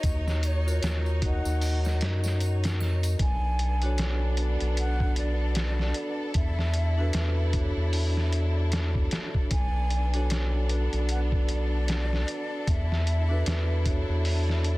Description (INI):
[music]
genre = trip hop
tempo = 76 BPM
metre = 4/4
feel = swing 58% on 16ths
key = B dorian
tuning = A4 = 440 Hz
[part]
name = mellow hollow concert flute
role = melody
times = 0.0-14.3 s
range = C#5 to G#5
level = -37 LUFS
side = equal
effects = tape echo
[part]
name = vibraphone with medium mallets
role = accompaniment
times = 0.0-14.8 s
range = D4 to D#5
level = -35 LUFS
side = equal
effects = harmonic tremolo, vintage 12-bit sampler grit, tape echo
[part]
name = warm symphonic violin section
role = sustained chords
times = 0.0-14.8 s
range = B3 to C#5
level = -37 LUFS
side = equal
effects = none
[part]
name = round analog bass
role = bass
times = 0.0-14.8 s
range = B1 to F#2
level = -26 LUFS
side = equal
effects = none
[part]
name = trip hop sampler-style drum kit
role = drums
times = 0.0-14.8 s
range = hi-hat, kick drum, snare drum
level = -30 LUFS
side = equal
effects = none
[part]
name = tambourine and triangle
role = percussion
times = 0.0-3.2 s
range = none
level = -44 LUFS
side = right 1 dB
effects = none
[sound]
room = little or no reverb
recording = dense, heavily limited modern master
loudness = -24 LUFS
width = side -20 dB against mid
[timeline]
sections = 0.0-3.2 A section; 3.2-14.8 B section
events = filter sweep on vibraphone 0.0-3.2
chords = 0.0 D#m7; 3.2 Bm7; 6.4 E7sus4; 9.5 Bm7; 12.7 E7sus4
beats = | 0.04 0.83 1.62 2.41 | 3.20 3.99 4.78 5.57 | 6.36 7.15 7.94 8.73 | 9.52 10.30 11.09 11.88 | 12.67 13.46 14.25